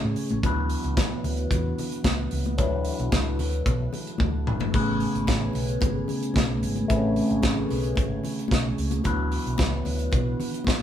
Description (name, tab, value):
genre	disco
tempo	111 BPM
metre	4/4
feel	straight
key	unclear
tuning	A4 = 437 Hz
part	overdriven tine electric piano	accompaniment	0.0-10.8 s	F#3 to B4	-29 LUFS	left 2 dB	phaser
part	mellow tonewheel organ	sustained chords	0.0-10.8 s	C#3 to G#4	-33 LUFS	right 3 dB	slow rotary speaker
part	hollow-body short-scale fingered electric bass	bass	0.0-10.3 s	G#1 to A2	-28 LUFS	equal	none
part	modern studio drum kit	drums	0.2-10.8 s	hi-hat, kick drum, snare drum, splash cymbal, toms	-26 LUFS	equal	none
part	congas	percussion	0.3-10.8 s	none	-34 LUFS	left 3 dB	none
room	moderate studio reverb, RT60 0.9 s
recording	band playing live in one room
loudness	-23 LUFS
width	side -10 dB against mid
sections	0.0-10.8 A section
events	drum fill 4.2-4.7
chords	0.4 D69; 4.7 Amaj9; 9.1 D69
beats	| 0.43 0.97 1.51 2.05 | 2.59 3.13 3.67 4.20 | 4.74 5.28 5.82 6.36 | 6.90 7.44 7.97 8.51 | 9.05 9.59 10.13 10.67